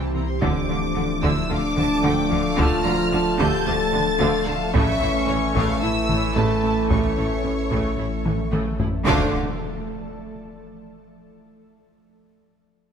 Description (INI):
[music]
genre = cinematic, hybrid orchestral and electronic film score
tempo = 111 BPM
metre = 4/4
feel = straight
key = D minor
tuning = A4 = 440 Hz
[part]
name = warm symphonic violin section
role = melody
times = 0.0-9.4 s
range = A5 to A6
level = -29 LUFS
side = left 1 dB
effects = none
[part]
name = rich symphonic violin section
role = second line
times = 0.0-9.4 s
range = F4 to Bb5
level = -30 LUFS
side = equal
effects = none
[part]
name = clear symphonic viola section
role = accompaniment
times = 0.0-9.4 s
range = C#3 to F4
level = -31 LUFS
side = right 1 dB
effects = none
[part]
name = bright trombone section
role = sustained chords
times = 0.0-9.3 s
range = E3 to A3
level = -30 LUFS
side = right 3 dB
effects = none
[part]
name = dark French horn section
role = sustained chords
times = 0.0-9.3 s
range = A3 to A4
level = -27 LUFS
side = left 4 dB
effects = none
[part]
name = ethereal airy pad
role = sustained chords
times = 0.0-9.4 s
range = E3 to E5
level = -28 LUFS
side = right 1 dB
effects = ensemble chorus, built-in reverb
[part]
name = thumb-piano-like synth pluck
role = arpeggios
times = 0.0-9.0 s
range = D3 to A4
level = -31 LUFS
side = left 1 dB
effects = chorus
[part]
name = soft dub sub bass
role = bass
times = 0.0-9.4 s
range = D1 to C2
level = -30 LUFS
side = equal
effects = none
[part]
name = rich symphonic cello section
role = bass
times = 0.1-9.4 s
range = A2 to D3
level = -29 LUFS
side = right 2 dB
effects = none
[part]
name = clear symphonic double bass section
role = bass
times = 0.2-9.4 s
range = A1 to D2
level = -28 LUFS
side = right 3 dB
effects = none
[part]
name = taiko ensemble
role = drums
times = 0.4-9.2 s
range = none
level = -26 LUFS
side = left 1 dB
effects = none
[part]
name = impact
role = sound effects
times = 9.1-11.2 s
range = none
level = -31 LUFS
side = equal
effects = none
[sound]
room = moderate scoring stage reverb, RT60 1.9 s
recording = none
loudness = -19 LUFS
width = side -7 dB against mid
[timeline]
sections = 0.0-9.1 A section; 9.1-11.2 B section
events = drum fill 8.3-9.1; impact 9.1-11.2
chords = 0.4 Dm; 4.7 A; 9.1 Dm